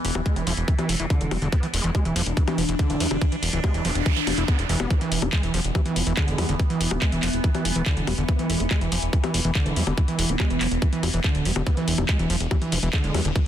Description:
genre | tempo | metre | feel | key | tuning
psychedelic trance | 142 BPM | 4/4 | straight | unclear | A4 = 440 Hz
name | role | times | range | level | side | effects
evolving wavetable pad | sustained chords | 0.0-13.5 s | E3 to D4 | -30 LUFS | left 1 dB | phaser, built-in reverb, sidechain pumping
fat analog bass | bass | 0.0-13.3 s | D1 to E2 | -26 LUFS | equal | tube saturation
drum and bass drum kit | drums | 0.0-13.4 s | bongos, handclaps, hi-hat | -28 LUFS | left 2 dB | none
overdriven acid bass | riff | 0.2-13.4 s | D3 to F4 | -28 LUFS | right 2 dB | distortion, auto-pan, sidechain pumping, tape echo
electronic kick drum | drums | 0.3-13.4 s | none | -22 LUFS | equal | none
vowel-sweep wobble bass | second line | 1.5-13.2 s | E3 to B3 | -39 LUFS | right 2 dB | none
noise sweep | sound effects | 3.6-4.9 s | none | -31 LUFS | right 6 dB | none
room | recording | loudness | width
little or no reverb | dense, heavily limited modern master | -21 LUFS | side -10 dB against mid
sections
0.0-13.5 A section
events
noise sweep 3.6-4.9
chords
0.0 E5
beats
0.26 0.68 1.10 | 1.52 1.95 2.37 2.79 | 3.21 3.64 4.06 4.48 | 4.91 5.33 5.75 6.17 | 6.59 7.02 7.44 7.86 | 8.29 8.71 9.13 9.55 | 9.98 10.40 10.82 11.24 | 11.67 12.09 12.51 12.93 | 13.36

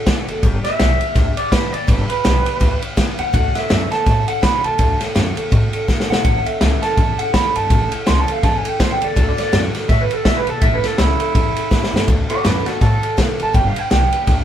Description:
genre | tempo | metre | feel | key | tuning
rockabilly | 165 BPM | 4/4 | swing 59% on 8ths | D major | A4 = 440 Hz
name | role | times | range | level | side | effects
picked steel-string acoustic guitar | accompaniment | 0.0-14.4 s | A2 to B4 | -27 LUFS | right 1 dB | none
upright bass | bass | 0.1-14.4 s | F#1 to B2 | -20 LUFS | equal | none
vintage drum kit | drums | 0.1-14.4 s | kick drum, ride cymbal, snare drum | -17 LUFS | equal | none
electric guitar through a small old amp | melody | 0.6-14.4 s | D4 to C6 | -20 LUFS | right 2 dB | none
room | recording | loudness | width
moderate studio reverb, RT60 0.8 s | band playing live in one room | -14 LUFS | side -10 dB against mid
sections
0.0-12.1 A section; 12.1-14.4 B section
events
clean electric guitar solo 0.0-12.1; drum fill 5.9-6.2, 11.7-12.1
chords
0.4 G; 3.3 D; 6.2 A; 9.2 D; 10.6 A; 12.1 D; 13.5 G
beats
0.07 | 0.43 0.80 1.16 1.52 | 1.89 2.25 2.61 2.98 | 3.34 3.70 4.07 4.43 | 4.79 5.16 5.52 5.88 | 6.25 6.61 6.98 7.34 | 7.71 8.07 8.43 8.80 | 9.16 9.53 9.89 10.26 | 10.62 10.99 11.35 11.72 | 12.08 12.45 12.81 13.18 | 13.54 13.91 14.28

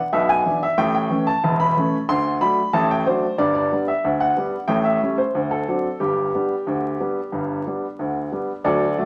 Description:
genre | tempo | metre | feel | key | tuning
ragtime piano | 92 BPM | 2/4 | straight | G major | A4 = 440 Hz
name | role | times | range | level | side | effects
clear upright piano | solo | 0.0-9.1 s | E1 to C6 | -21 LUFS | equal | none
room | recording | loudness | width
wet studio reverb, RT60 0.9 s | vinyl crackle | -21 LUFS | mono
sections
0.0-8.6 A section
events
none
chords
0.0 E5; 0.8 A; 2.1 D; 3.4 G; 4.7 A7; 5.3 D7; 6.0 G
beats
0.13 | 0.78 1.43 | 2.08 2.74 | 3.39 4.04 | 4.69 5.35 | 6.01 6.67 | 7.33 7.98 | 8.64

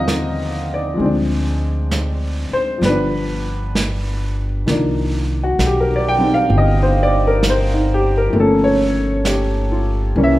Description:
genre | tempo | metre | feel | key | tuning
jazz ballad | 66 BPM | 4/4 | swing 66% on 8ths | C minor | A4 = 440 Hz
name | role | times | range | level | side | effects
warm upright piano | accompaniment | 0.0-10.4 s | D3 to Bb5 | -17 LUFS | left 1 dB | none
upright bass | bass | 0.0-10.4 s | G1 to Eb2 | -19 LUFS | equal | none
vintage brush drum kit | drums | 0.1-10.4 s | brushed snare drum, hi-hat, snare drum | -25 LUFS | right 2 dB | none
room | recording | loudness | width
light reverb | none | -15 LUFS | side -16 dB against mid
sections
0.0-4.7 A section; 4.7-10.4 B section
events
none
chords
0.0 Cm11; 1.0 Dm7b5; 2.8 G7; 4.7 Cm11; 8.3 Gm7b5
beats
0.08 | 0.99 1.91 2.83 3.75 | 4.68 5.60 6.51 7.42 | 8.33 9.24 10.15

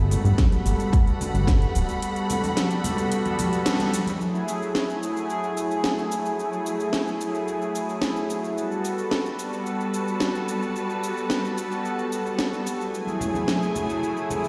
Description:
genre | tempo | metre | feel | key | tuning
nu-disco, nu disco | 110 BPM | 4/4 | straight | F# phrygian | A4 = 440 Hz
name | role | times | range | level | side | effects
warm analog pad | accompaniment | 0.0-14.5 s | F#3 to A4 | -29 LUFS | equal | chorus, sidechain pumping, tape echo
clear studio string section | sustained chords | 0.0-14.5 s | F#3 to B5 | -34 LUFS | equal | sidechain pumping, low-pass filter
chorused synth bass | bass | 0.0-1.8 s | D1 to G2 | -23 LUFS | equal | tube saturation
house drum kit | drums | 0.1-14.5 s | hi-hat, shaker, snare drum | -32 LUFS | equal | none
congas | percussion | 0.1-4.2, 13.1-14.5 s | none | -32 LUFS | equal | none
electronic kick drum | drums | 0.4-1.6 s | none | -22 LUFS | equal | none
room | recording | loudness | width
moderate lush hall reverb, RT60 2.4 s | played on a big sound system in a bare room, stone room reverb | -25 LUFS | mono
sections
0.0-4.2 A section; 4.2-14.5 B section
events
filter sweep on analog synth pad 0.0-4.2; break 2.0-4.2; band accent 3.7; filter sweep on string section 4.2-14.5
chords
0.0 Gmaj9; 4.2 F#m9; 8.6 Gmaj9; 12.9 F#m9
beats
0.39 0.93 1.48 | 2.02 2.57 3.12 3.66 | 4.21 4.75 5.30 5.84 | 6.39 6.93 7.48 8.03 | 8.57 9.12 9.66 10.21 | 10.75 11.30 11.84 12.39 | 12.93 13.48 14.03

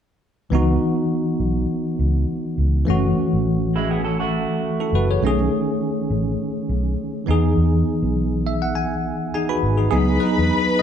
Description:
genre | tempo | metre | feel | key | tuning
soul | 102 BPM | 4/4 | swing 54% on 16ths | C# minor | A4 = 440 Hz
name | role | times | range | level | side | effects
bell-like tine electric piano | accompaniment | 0.5-10.8 s | D#3 to B5 | -20 LUFS | equal | medium stereo tremolo
vintage muted fingered electric bass | bass | 0.5-10.5 s | F#1 to E2 | -21 LUFS | equal | none
electric guitar through a small old amp | riff | 3.8-5.0 s | G#3 to A4 | -25 LUFS | right 5 dB | spring reverb
muted studio string section | second line | 9.9-10.8 s | B4 to B5 | -22 LUFS | left 3 dB | none
room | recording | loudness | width
moderate stone room reverb, RT60 1.4 s | band playing live in one room | -18 LUFS | side -8 dB against mid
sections
0.5-9.9 A section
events
tine electric piano fill 8.2-9.9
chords
0.5 C#m11; 2.9 F#m7; 5.2 B13; 7.3 Emaj7; 9.9 C#m11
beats
| 0.52 1.10 1.69 2.28 | 2.87 3.46 4.05 4.63 | 5.22 5.81 6.40 6.99 | 7.57 8.16 8.75 9.34 | 9.93 10.51

